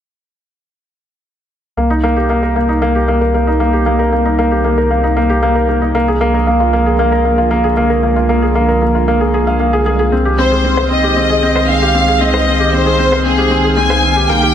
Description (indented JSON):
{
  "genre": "electronica",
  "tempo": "115 BPM",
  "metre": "4/4",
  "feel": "straight",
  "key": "C minor",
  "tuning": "A4 = 441 Hz",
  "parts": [
    { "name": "lush unison pad", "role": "sustained chords", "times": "1.8-14.5 s", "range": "C3 to F5", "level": "-22 LUFS", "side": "right 1 dB", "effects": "chorus" },
    { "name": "felt-muted upright piano", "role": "riff", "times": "1.8-14.5 s", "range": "Bb3 to F5", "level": "-13 LUFS", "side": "equal", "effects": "ping-pong delay" },
    { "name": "dark detuned saw bass", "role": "bass", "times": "1.8-14.5 s", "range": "C2", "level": "-17 LUFS", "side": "equal", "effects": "none" },
    { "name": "warm symphonic violin section", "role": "melody", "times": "10.4-14.5 s", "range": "Ab4 to Ab5", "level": "-14 LUFS", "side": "left 1 dB", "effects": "none" }
  ],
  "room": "moderate lush hall reverb, RT60 2.5 s",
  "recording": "none",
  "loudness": "-11 LUFS",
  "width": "side -9 dB against mid",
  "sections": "1.8-14.5 A section",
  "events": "fade-in on analog synth pad 1.8-14.5",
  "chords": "1.8 Cm7; 5.9 Bb7/C; 10.1 Abmaj7/C",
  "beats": "| 1.77 2.29 2.82 3.34 | 3.86 4.38 4.90 5.42 | 5.95 6.47 6.99 7.51 | 8.03 8.55 9.08 9.60 | 10.12 10.64 11.16 11.69 | 12.21 12.73 13.25 13.77 | 14.29"
}